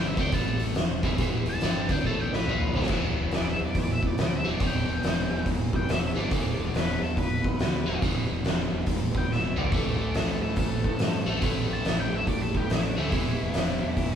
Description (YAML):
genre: blues rock power trio and southern rock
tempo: 141 BPM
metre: 4/4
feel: swing 64% on 8ths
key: E minor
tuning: A4 = 439 Hz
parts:
  - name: octave-fuzz lead guitar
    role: melody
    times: 0.0-14.2 s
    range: D4 to A5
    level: -34 LUFS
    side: left 1 dB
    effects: distortion
  - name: overdriven electric guitar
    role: riff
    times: 0.0-14.2 s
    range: E2 to D4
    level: -31 LUFS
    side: equal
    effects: none
  - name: fuzz fingered electric bass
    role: bass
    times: 0.0-14.2 s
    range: E1 to A2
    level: -33 LUFS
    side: equal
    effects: overdrive
  - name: oversized low-tuned drum kit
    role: drums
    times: 0.2-14.1 s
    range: crash cymbal, hi-hat, kick drum, snare drum, toms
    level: -26 LUFS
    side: equal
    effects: none
room: light reverb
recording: band playing live in one room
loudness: -24 LUFS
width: side -8 dB against mid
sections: 0.0-2.9 A section; 2.9-14.2 B section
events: drum fill 2.0-2.9, 9.3-9.7; lead electric guitar solo 2.9-14.2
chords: 0.3 A5; 0.8 Em; 2.0 A5; 2.5 E5; 2.9 E7(no3); 9.7 A5; 13.1 E5